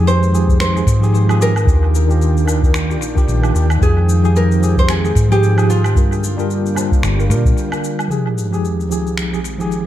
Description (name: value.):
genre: sunset chillout.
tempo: 112 BPM.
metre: 4/4.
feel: swing 58% on 16ths.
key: F dorian.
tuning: A4 = 443 Hz.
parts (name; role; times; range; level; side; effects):
nylon-string guitar; melody; 0.0-7.5 s; F4 to C5; -22 LUFS; right 1 dB; tape echo.
tine electric piano; accompaniment; 0.0-9.8 s; Eb3 to G5; -20 LUFS; equal; medium stereo tremolo, auto-pan, dub echo.
lush unison pad; sustained chords; 0.0-9.9 s; D3 to G5; -24 LUFS; equal; chorus.
hollow-body short-scale fingered electric bass; bass; 0.0-7.5 s; G1 to Bb2; -15 LUFS; equal; none.
electronic shaker, finger snaps and woodblock; drums; 0.1-9.8 s; none; -26 LUFS; equal; tape echo.
electronic kick drum; drums; 0.5-7.5 s; none; -15 LUFS; equal; overdrive.
sub drop; sound effects; 8.1-9.9 s; none; -23 LUFS; equal; none.
room: light reverb, digital ambience.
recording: echo-heavy mix.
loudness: -13 LUFS.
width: side -12 dB against mid.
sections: 0.0-8.1 A section; 8.1-9.9 B section.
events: impact 8.1-9.9; filter sweep on analog synth pad 8.1-9.9.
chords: 0.0 Fm9; 1.7 Ebmaj9; 3.8 Fm9; 6.0 Gm7; 8.1 Fm9.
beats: 0.07 0.60 1.14 | 1.67 2.21 2.74 3.28 | 3.82 4.35 4.89 5.42 | 5.96 6.49 7.03 7.57 | 8.10 8.64 9.17 9.71.